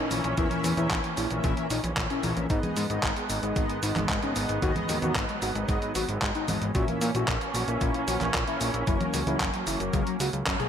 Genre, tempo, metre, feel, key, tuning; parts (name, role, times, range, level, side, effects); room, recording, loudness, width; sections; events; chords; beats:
italo disco; 113 BPM; 4/4; straight; G# minor; A4 = 441 Hz
soft octave-layered synth lead; melody; 0.0-10.7 s; E3 to G#4; -32 LUFS; left 2 dB; chorus, tape echo
muted studio string section; sustained chords; 0.0-10.7 s; D#3 to C#4; -33 LUFS; right 3 dB
mellow synth brass; stabs; 0.0-10.7 s; G#2 to E5; -34 LUFS; left 5 dB; chorus
fat analog bass; bass; 0.1-10.6 s; F#1 to A#2; -32 LUFS; equal
detuned 8-bit digital drum machine; drums; 0.1-10.7 s; cabasa, congas, handclaps, hi-hat, toms; -30 LUFS; equal; gated reverb
electronic kick drum; drums; 0.4-10.6 s; -30 LUFS; equal
light reverb; -25 LUFS; side -8 dB against mid
0.0-10.7 A section
band accent 10.5
0.0 A#dim; 2.5 G#m; 6.7 A#dim; 8.9 F#
| 0.38 0.91 1.44 1.97 | 2.50 3.03 3.56 4.09 | 4.62 5.16 5.69 6.22 | 6.75 7.28 7.81 8.34 | 8.87 9.40 9.93 10.46